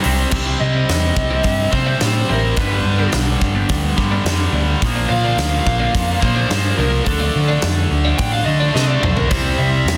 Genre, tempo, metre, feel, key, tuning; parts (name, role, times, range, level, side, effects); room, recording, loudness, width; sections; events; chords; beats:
quiet-loud alternative rock; 107 BPM; 4/4; straight; C major; A4 = 442 Hz
thick fuzz guitar; riff; 0.0-0.3, 9.3-10.0 s; C3 to G4; -26 LUFS; equal; distortion
tight distorted guitar; riff; 0.0-10.0 s; G2 to D4; -23 LUFS; equal; distortion
big rock drum kit; drums; 0.0-10.0 s; crash cymbal, hi-hat, kick drum, snare drum, splash cymbal, toms; -24 LUFS; equal
overdriven picked electric bass; bass; 0.1-10.0 s; G1 to D3; -21 LUFS; equal
twelve-string electric guitar; arpeggios; 0.5-9.2 s; C3 to E4; -28 LUFS; equal; phaser, slapback echo
smooth overdriven lead guitar; melody; 0.6-10.0 s; A4 to G5; -24 LUFS; equal; slapback echo
light reverb, studio ambience; dense, heavily limited modern master; -17 LUFS; mono
0.3-10.0 A section
lead electric guitar solo 0.3-10.0; drum fill 8.7-9.3
0.3 C; 2.6 G; 4.8 Bb; 7.1 Dm; 9.3 C
| 0.32 0.88 1.44 2.00 | 2.56 3.13 3.69 4.25 | 4.81 5.38 5.94 6.50 | 7.06 7.62 8.19 8.75 | 9.31 9.87